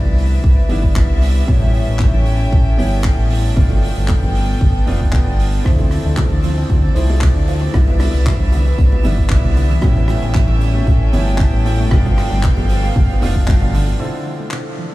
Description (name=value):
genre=nu-disco, nu disco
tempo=115 BPM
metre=4/4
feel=straight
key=D dorian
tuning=A4 = 441 Hz
part: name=clear baby grand piano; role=accompaniment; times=0.0-14.9 s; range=D3 to A4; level=-25 LUFS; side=equal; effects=sidechain pumping, analog delay
part: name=warm studio string section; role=sustained chords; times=0.0-14.9 s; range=B3 to G5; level=-26 LUFS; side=equal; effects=sidechain pumping, low-pass filter
part: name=fingered electric bass with an envelope filter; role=bass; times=0.1-13.9 s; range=F1 to D2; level=-16 LUFS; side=equal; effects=none
part: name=congas, tube shaker and bongos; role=percussion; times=0.1-14.0 s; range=none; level=-27 LUFS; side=right 2 dB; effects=none
part: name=damped 70s drum kit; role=drums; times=0.2-14.6 s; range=handclaps, hi-hat, rim click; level=-29 LUFS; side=equal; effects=studio reverb
part: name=electronic kick drum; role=drums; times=0.4-13.6 s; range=none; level=-14 LUFS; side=equal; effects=studio reverb
part: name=analog pluck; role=arpeggios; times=5.7-14.9 s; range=B2 to A3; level=-27 LUFS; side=right 2 dB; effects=chorus, phaser, sidechain pumping, diffuse ambient delay
room=small room ambience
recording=none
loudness=-12 LUFS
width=side -18 dB against mid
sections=0.0-14.0 A section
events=none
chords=0.0 Cmaj9; 1.5 A7; 3.6 G9; 5.7 Dm7; 7.7 Cmaj9; 9.8 A7; 11.9 G9; 14.0 Dm7